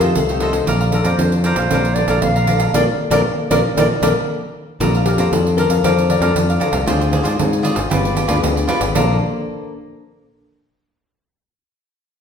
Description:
samba and choro; 116 BPM; 4/4; straight; Bb major; A4 = 441 Hz
baroque flute; melody; 0.0-4.1 s; A4 to F5; -22 LUFS; right 3 dB
cavaquinho; accompaniment; 0.0-9.2 s; F4 to Bb5; -22 LUFS; right 2 dB
nylon-string guitar; accompaniment; 0.0-9.7 s; C3 to C5; -24 LUFS; left 4 dB
modern bright fingered electric bass; bass; 0.0-9.2 s; G1 to Ab2; -19 LUFS; left 1 dB
pandeiro; percussion; 0.0-9.1 s; -21 LUFS; right 4 dB
bell-like tine electric piano; second line; 0.2-9.2 s; F4 to D5; -21 LUFS; left 6 dB
wet recital hall reverb, RT60 1.4 s; recorded in a church or concert hall; -14 LUFS; side -7 dB against mid
0.0-4.8 A section; 4.8-9.0 B section; 9.0-11.0 C section
band accent 2.7-4.8
0.0 F9; 0.7 Bbmaj9; 6.9 Dm7b5; 7.9 G7b9; 9.0 Bbmaj9
0.15 | 0.67 1.19 1.71 2.23 | 2.74 3.26 3.78 4.30 | 4.81 5.33 5.85 6.37 | 6.88 7.40 7.92 8.44 | 8.95 9.47

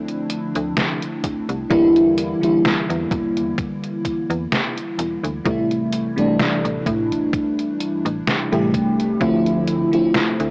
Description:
vaporwave; 64 BPM; 4/4; swing 54% on 16ths; D minor; A4 = 444 Hz
FM electric piano with soft pad layer; accompaniment; 0.0-10.5 s; C3 to G4; -18 LUFS; equal; phaser, lush chorus, vintage 12-bit sampler grit, cassette tape, tape echo
detuned 8-bit digital drum machine; drums; 0.1-10.5 s; hi-hat, snare drum; -23 LUFS; equal; cassette tape
slap-like FM bass; bass; 0.6-10.5 s; D1 to A2; -26 LUFS; equal
electronic kick drum; drums; 1.2-9.4 s; -26 LUFS; equal; cassette tape
moderate spring reverb, RT60 2.5 s; home recording on cassette, small speaker sound; -17 LUFS; side -31 dB against mid
0.0-10.5 A section
0.0 Dm9; 1.7 Em7b5; 5.5 Am7; 9.2 Dm9
0.77 | 1.71 2.65 3.58 4.52 | 5.46 6.39 7.33 8.27 | 9.21 10.14

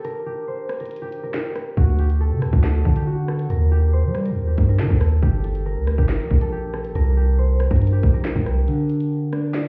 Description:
hip hop, drill; 139 BPM; 4/4; half-time; A4 = 440 Hz
concert harp; melody; 0.0-9.7 s; F#4 to C5; -31 LUFS; equal; low-pass filter
drill drum kit; drums; 0.0-9.6 s; handclaps, hi-hat, kick drum, rim click, snare drum; -22 LUFS; equal
long sustained 808-style bass; bass; 1.8-8.7 s; G1 to G3; -21 LUFS; equal
mellow electric guitar; accompaniment; 8.7-9.7 s; D3 to D5; -24 LUFS; equal; analog chorus, low-pass filter
little or no reverb; heard muffled through a wall, stone room reverb, EQ; -20 LUFS; mono
0.0-9.7 A section
break 0.0-1.8, 8.7-9.7
0.0 N.C.; 1.8 Dadd11; 3.5 Eb; 5.2 Gm; 7.0 C5; 8.7 N.C.
| 0.05 0.48 0.91 1.34 | 1.77 2.20 2.64 3.07 | 3.50 3.93 4.36 4.79 | 5.23 5.66 6.09 6.52 | 6.95 7.38 7.82 8.25 | 8.68 9.11 9.54

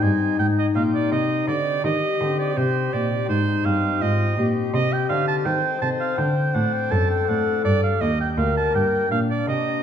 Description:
classical, baroque-style sonata movement with continuo; 82 BPM; 4/4; rubato; C minor, G minor from 4.7 s; A4 = 436 Hz
mellow tenor recorder; melody; 0.0-9.8 s; D4 to C5; -24 LUFS; left 6 dB
clear oboe; second line; 0.0-9.8 s; C5 to A5; -25 LUFS; right 6 dB
chamber organ, principal chorus; accompaniment; 0.0-9.8 s; D2 to A4; -28 LUFS; left 1 dB
rich cello; bass; 0.0-9.8 s; D2 to Eb3; -24 LUFS; right 2 dB
wet recital hall reverb, RT60 1.2 s; dark, warm production; -19 LUFS; side -8 dB against mid
0.0-9.8 A section
0.0 Cm; 4.7 Am7b5/C; 6.2 D7; 7.7 Gm; 9.1 Gm/Bb
0.38 1.11 | 1.84 2.57 3.29 4.01 | 4.74 5.46 6.18 6.92 | 7.65 8.38 9.11

